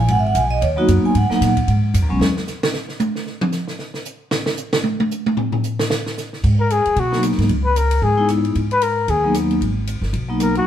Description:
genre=jazz, small-group swing and bop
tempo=227 BPM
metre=4/4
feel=swing 59% on 8ths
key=G# minor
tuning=A4 = 438 Hz
part: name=vibraphone with medium mallets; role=accompaniment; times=0.0-2.2, 7.1-10.6 s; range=F#3 to G#5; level=-18 LUFS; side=equal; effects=none
part: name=upright bass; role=bass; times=0.0-2.4, 6.4-10.6 s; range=G1 to B2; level=-19 LUFS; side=equal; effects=none
part: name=compact cocktail drum kit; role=drums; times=0.1-10.6 s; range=crash cymbal, hi-hat, kick drum, ride cymbal, rim click, snare drum, toms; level=-23 LUFS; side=right 1 dB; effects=none
part: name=warm flugelhorn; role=melody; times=6.6-10.7 s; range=F#4 to B4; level=-18 LUFS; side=left 3 dB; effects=none
room=moderate studio reverb, RT60 0.9 s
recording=band playing live in one room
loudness=-16 LUFS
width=side -10 dB against mid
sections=0.0-6.4 A section; 6.4-10.7 B section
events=drum solo 2.2-6.4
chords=0.1 G#m7; 2.2 N.C.; 6.4 G#m7; 7.5 C#m7; 8.5 G#m7

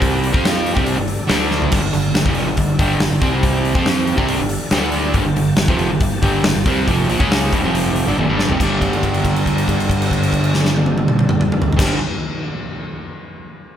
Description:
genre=hard rock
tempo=140 BPM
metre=4/4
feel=straight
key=G minor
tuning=A4 = 440 Hz
part: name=overdriven tonewheel organ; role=sustained chords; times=0.0-12.0 s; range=F3 to A5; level=-28 LUFS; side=left 1 dB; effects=chorus vibrato, fast rotary speaker
part: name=overdriven semi-hollow guitar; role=riff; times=0.0-12.0 s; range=F2 to F4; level=-18 LUFS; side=right 1 dB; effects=none
part: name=modern bright fingered electric bass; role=bass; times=0.0-12.0 s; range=F1 to F2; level=-24 LUFS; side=equal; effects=none
part: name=huge arena drum kit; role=drums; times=0.0-11.9 s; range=crash cymbal, hi-hat, kick drum, snare drum, toms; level=-19 LUFS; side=equal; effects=none
room=light reverb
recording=band playing live in one room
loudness=-14 LUFS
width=side -10 dB against mid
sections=0.0-8.6 A section; 8.6-12.0 B section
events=drum fill 1.5, 8.2-8.6; held note 8.6-11.8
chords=0.3 F5; 0.8 G5; 1.3 D5; 1.7 G5; 3.2 C5; 3.8 F5; 4.2 G5; 4.7 D5; 5.2 Gm; 7.6 F5; 8.1 G5

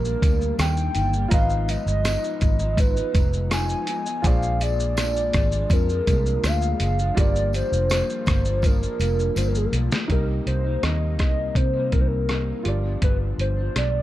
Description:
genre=indie pop, bedroom pop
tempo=82 BPM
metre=4/4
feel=straight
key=unclear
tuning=A4 = 440 Hz
part: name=warbly nostalgic lead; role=melody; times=0.0-14.0 s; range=Ab4 to Ab5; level=-27 LUFS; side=equal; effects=wide subtle chorus, slapback echo
part: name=electric guitar through a small old amp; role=accompaniment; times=0.0-14.0 s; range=G2 to Eb4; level=-30 LUFS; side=left 5 dB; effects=analog chorus, warbly pitch drift
part: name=warm upright piano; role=accompaniment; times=0.0-14.0 s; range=Eb4 to Bb5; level=-36 LUFS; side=right 4 dB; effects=cassette tape
part: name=vintage muted fingered electric bass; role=bass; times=0.0-14.0 s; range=F1 to C3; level=-24 LUFS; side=equal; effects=none
part: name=lo-fi sampler-style drum kit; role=drums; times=0.0-13.9 s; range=hi-hat, kick drum, rim click, shaker, snare drum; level=-23 LUFS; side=equal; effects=none
part: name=tambourine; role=percussion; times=0.2-9.5 s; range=none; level=-42 LUFS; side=right 3 dB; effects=none
room=little or no reverb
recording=dark, warm production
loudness=-20 LUFS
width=side -14 dB against mid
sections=0.0-10.1 A section; 10.1-14.0 B section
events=drum fill 8.6-10.1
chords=0.0 Ebmaj7; 1.3 Abm6; 4.2 Bb7; 7.2 Gm7; 10.1 Cm7; 12.7 G7

